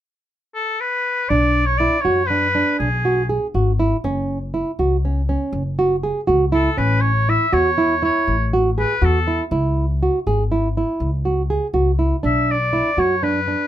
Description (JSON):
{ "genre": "contemporary instrumental, chamber music in an uneven meter", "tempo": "241 BPM (eighths)", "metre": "11/8", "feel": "straight", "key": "B dorian", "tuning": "A4 = 439 Hz", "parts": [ { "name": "clear oboe", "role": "melody", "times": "0.5-13.7 s", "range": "G#4 to E5", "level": "-20 LUFS", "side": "left 1 dB", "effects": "none" }, { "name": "nylon-string guitar", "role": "arpeggios", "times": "1.3-13.7 s", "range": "C#4 to G#4", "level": "-20 LUFS", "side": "right 2 dB", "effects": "none" }, { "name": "upright bass", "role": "bass", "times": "1.3-13.5 s", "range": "F#1 to F#2", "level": "-21 LUFS", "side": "left 1 dB", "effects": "none" } ], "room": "light reverb", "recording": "close, detailed microphones", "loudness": "-16 LUFS", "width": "side -12 dB against mid", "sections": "0.0-1.3 A section; 1.3-13.7 B section", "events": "none", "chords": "0.0 N.C.; 1.3 Bm; 4.0 F#5; 6.8 A; 9.5 C#m; 12.2 Bm" }